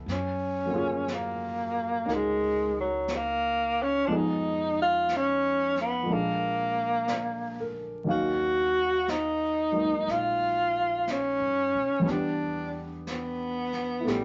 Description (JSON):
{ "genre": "jazz ballad", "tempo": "60 BPM", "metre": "4/4", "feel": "swing 66% on 8ths", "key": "F# major", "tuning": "A4 = 440 Hz", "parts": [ { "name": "warm grand piano", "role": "accompaniment", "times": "0.0-14.2 s", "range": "D#3 to E#5", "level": "-35 LUFS", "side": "equal", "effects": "none" }, { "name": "breathy tenor saxophone", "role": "melody", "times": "0.1-14.2 s", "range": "F#3 to F#4", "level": "-29 LUFS", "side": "equal", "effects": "none" }, { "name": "upright bass", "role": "bass", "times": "0.1-14.2 s", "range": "A1 to B2", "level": "-44 LUFS", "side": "equal", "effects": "none" }, { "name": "jazz brush drum kit", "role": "drums", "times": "0.1-14.2 s", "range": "brushed snare drum, hi-hat, snare drum", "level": "-44 LUFS", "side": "equal", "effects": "none" } ], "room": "moderate studio reverb, RT60 0.6 s", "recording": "vinyl crackle, nothing above 7.8 kHz", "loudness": "-28 LUFS", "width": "mono", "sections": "0.1-14.2 A section", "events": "none", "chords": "0.1 F#maj9; 4.1 Fm7b5; 6.1 A#7; 8.1 D#m9; 12.1 Em7" }